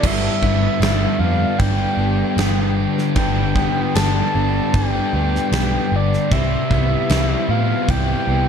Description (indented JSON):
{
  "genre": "rock, shoegaze and dream pop",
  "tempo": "76 BPM",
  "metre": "4/4",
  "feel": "straight",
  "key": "G major",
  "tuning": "A4 = 440 Hz",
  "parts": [
    { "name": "breathy flute-like synth lead", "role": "melody", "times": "0.0-8.5 s", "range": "D5 to A5", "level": "-24 LUFS", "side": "right 1 dB", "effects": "chorus, analog delay" },
    { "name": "biting overdriven guitar", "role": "riff", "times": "0.0-8.5 s", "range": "G2 to G4", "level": "-26 LUFS", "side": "right 11 dB", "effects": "reverse reverb" },
    { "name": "crunchy overdriven guitar", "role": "riff", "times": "0.0-8.5 s", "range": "G2 to E4", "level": "-25 LUFS", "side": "right 1 dB", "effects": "none" },
    { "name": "thick fuzz guitar", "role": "riff", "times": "0.0-8.5 s", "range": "G2 to E4", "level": "-23 LUFS", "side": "left 12 dB", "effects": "distortion, ensemble chorus" },
    { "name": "vintage muted picked electric bass", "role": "bass", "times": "0.0-8.5 s", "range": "G1 to A2", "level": "-20 LUFS", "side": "right 1 dB", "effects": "none" },
    { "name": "gated 80s drum kit", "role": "drums", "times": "0.0-8.1 s", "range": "crash cymbal, kick drum, snare drum", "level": "-23 LUFS", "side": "equal", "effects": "none" }
  ],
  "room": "light reverb, studio reverb",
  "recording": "dark, warm production",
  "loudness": "-16 LUFS",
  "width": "side -7 dB against mid",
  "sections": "0.0-8.5 A section",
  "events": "none",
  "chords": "0.0 G; 6.3 Cmaj7"
}